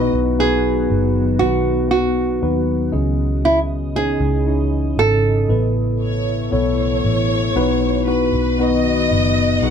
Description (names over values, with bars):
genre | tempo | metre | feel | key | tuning
pop ballad | 59 BPM | 4/4 | straight | unclear | A4 = 441 Hz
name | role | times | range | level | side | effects
warm studio violin section | second line | 0.0-9.7 s | B4 to F#5 | -23 LUFS | equal | none
mellow tine electric piano | accompaniment | 0.0-9.7 s | A2 to D#5 | -20 LUFS | left 3 dB | none
glassy FM pad | sustained chords | 0.0-9.7 s | B2 to D#5 | -26 LUFS | left 2 dB | ensemble chorus, built-in reverb
vintage muted fingered electric bass | bass | 0.0-9.7 s | F#1 to D#2 | -21 LUFS | right 1 dB | none
nylon-string guitar | melody | 0.4-7.0 s | E4 to A4 | -20 LUFS | right 5 dB | none
room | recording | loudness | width
moderate small room reverb, RT60 0.5 s | band playing live in one room | -15 LUFS | side -7 dB against mid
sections
0.0-9.7 A section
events
none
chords
0.0 B; 2.9 C#madd9; 5.5 Asus2; 7.6 B